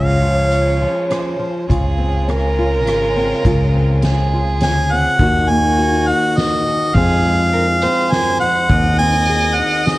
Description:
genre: acoustic folk-pop ballad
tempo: 103 BPM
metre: 3/4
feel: straight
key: unclear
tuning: A4 = 437 Hz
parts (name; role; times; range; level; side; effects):
- clear harmonica; melody; 0.0-1.1, 4.6-10.0 s; Eb5 to Ab5; -17 LUFS; equal; none
- warm violin; second line; 0.0-10.0 s; Gb4 to Eb5; -21 LUFS; right 2 dB; tape echo
- nylon-string guitar; accompaniment; 0.0-10.0 s; Eb2 to Ab4; -21 LUFS; left 1 dB; none
- rich studio string section; sustained chords; 0.0-5.2 s; Db3 to F4; -28 LUFS; equal; none
- fretless electric bass; bass; 0.0-9.6 s; Ab1 to F2; -17 LUFS; equal; none
- soft-mallet drum kit; drums; 0.5-10.0 s; hi-hat, kick drum, ride cymbal, rim click, snare drum; -22 LUFS; equal; vintage 12-bit sampler grit
room: light reverb, small room reverb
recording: cassette tape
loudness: -13 LUFS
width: side -18 dB against mid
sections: 0.0-1.7 A section; 1.7-5.2 B section; 5.2-10.0 C section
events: none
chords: 0.0 Dbmaj7; 5.2 Ebm; 6.9 Fm; 8.7 Ab/Eb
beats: 0.51 1.10 | 1.69 2.28 2.86 | 3.44 4.03 4.61 | 5.20 5.78 6.37 | 6.95 7.53 8.11 | 8.69 9.27 9.85

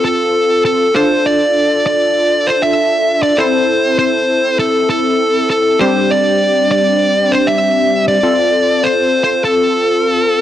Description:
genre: pop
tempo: 99 BPM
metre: 4/4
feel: straight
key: unclear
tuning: A4 = 440 Hz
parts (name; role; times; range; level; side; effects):
- fuzz lead guitar; melody; 0.0-10.4 s; A4 to E5; -12 LUFS; equal; distortion, tape echo
- funky polysynth comp; accompaniment; 0.0-10.4 s; G3 to A4; -16 LUFS; left 2 dB; chorus
room: light reverb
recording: dry, gritty hardware recording, transformer saturation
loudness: -11 LUFS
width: side -11 dB against mid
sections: 0.0-10.4 A section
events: none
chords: 0.0 F; 1.0 Dmadd9; 3.4 Am; 5.8 Csus2/G; 8.2 F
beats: 0.35 | 0.96 1.57 2.17 2.78 | 3.38 3.99 4.60 5.20 | 5.81 6.41 7.02 7.63 | 8.23 8.84 9.45 10.05

